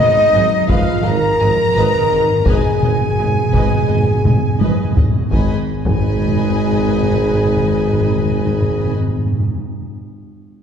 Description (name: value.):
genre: cinematic, epic orchestral film score.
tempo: 84 BPM.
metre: 4/4.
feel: straight.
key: G# dorian.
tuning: A4 = 441 Hz.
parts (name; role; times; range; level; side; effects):
rich studio violin section; melody; 0.0-8.9 s; D#5 to A#5; -28 LUFS; left 4 dB; none.
rich studio violin section; second line; 0.0-8.9 s; B4 to B5; -31 LUFS; left 3 dB; none.
silver concert flute; second line; 0.0-8.9 s; D#5 to A#5; -28 LUFS; left 1 dB; none.
rich studio viola section; accompaniment; 0.0-8.9 s; D#4 to D#5; -32 LUFS; right 1 dB; none.
warm French horn section; sustained chords; 0.0-8.9 s; D#4 to A#4; -19 LUFS; left 1 dB; none.
dark trumpet section; stabs; 0.0-8.9 s; G#4 to A#5; -23 LUFS; equal; none.
rich studio double bass section; bass; 0.0-8.9 s; G#1; -23 LUFS; right 3 dB; none.
warm symphonic cello section; bass; 0.0-8.9 s; G#2 to G#3; -25 LUFS; right 3 dB; none.
warm tuba; bass; 0.0-8.9 s; G#1; -23 LUFS; right 2 dB; none.
timpani; percussion; 0.0-9.6 s; G#2; -20 LUFS; equal; none.
taiko ensemble; drums; 0.7-6.7 s; none; -18 LUFS; left 1 dB; none.
room: wet scoring stage reverb, RT60 1.9 s.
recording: heard from further back in the room.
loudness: -13 LUFS.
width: side -8 dB against mid.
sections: 0.0-5.3 A section; 5.3-8.2 B section.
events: timpani fill 0.0-5.3; drum fill 4.2-5.3.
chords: 0.0 G#m.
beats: 0.33 1.04 1.75 | 2.46 3.18 3.89 4.60 | 5.32 6.03 6.74 7.46.